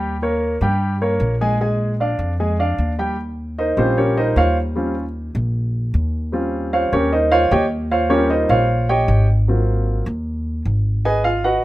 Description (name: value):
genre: Afro-Cuban jazz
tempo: 152 BPM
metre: 4/4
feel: straight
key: Eb mixolydian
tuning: A4 = 440 Hz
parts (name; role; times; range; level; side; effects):
- warm baby grand piano; accompaniment; 0.0-11.6 s; Gb3 to Ab5; -18 LUFS; right 1 dB; plate reverb
- upright bass; bass; 0.0-11.6 s; Ab1 to G2; -20 LUFS; equal; none
room: moderate studio reverb, RT60 0.6 s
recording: rough home demo mix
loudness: -16 LUFS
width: side -16 dB against mid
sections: 0.0-3.2 A section; 3.2-11.6 B section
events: grand piano solo 3.2-11.6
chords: 0.0 Eb7; 1.6 Bb6; 3.2 Eb13; 9.5 Ab13; 11.0 Abm7